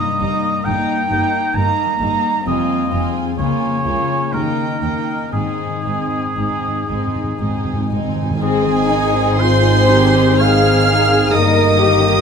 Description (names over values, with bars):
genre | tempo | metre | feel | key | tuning
classical, slow romantic movement for symphony orchestra | 57-67 BPM | 3/4 | rubato | Ab major | A4 = 438 Hz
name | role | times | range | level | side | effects
warm chamber violin section | melody | 0.0-12.2 s | G5 to F6 | -24 LUFS | right 1 dB | none
warm chamber violin section | second line | 0.0-12.2 s | G3 to Bb4 | -24 LUFS | left 1 dB | none
warm oboe | second line | 0.0-12.2 s | Ab4 to Bb5 | -21 LUFS | right 1 dB | none
dark chamber viola section | accompaniment | 0.0-12.2 s | Eb3 to C4 | -23 LUFS | right 4 dB | none
concert harp | arpeggios | 0.0-12.2 s | F2 to Eb5 | -24 LUFS | left 11 dB | none
dark chamber cello section | bass | 0.2-12.2 s | Db2 to Bb4 | -22 LUFS | equal | none
warm chamber double bass section | bass | 0.2-12.2 s | F1 to Eb2 | -21 LUFS | right 1 dB | none
timpani | percussion | 5.3-8.4 s | Ab2 | -25 LUFS | right 1 dB | none
mellow clarinet | second line | 8.4-12.2 s | Ab4 to F5 | -24 LUFS | right 1 dB | none
mellow large flute ensemble | second line | 8.4-12.2 s | Ab4 to F5 | -22 LUFS | left 2 dB | none
dark French horn section | sustained chords | 8.4-12.2 s | Bb3 to Eb4 | -23 LUFS | left 5 dB | none
room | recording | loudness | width
moderate recital hall reverb, RT60 1.7 s | close, detailed microphones | -14 LUFS | side -6 dB against mid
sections
0.0-8.4 A section; 8.4-12.2 A section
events
timpani fill 5.3-8.4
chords
0.0 Eb/G; 2.5 Fm7; 3.4 Bbm7/Db; 4.3 Eb; 5.3 Ab; 11.3 Eb/G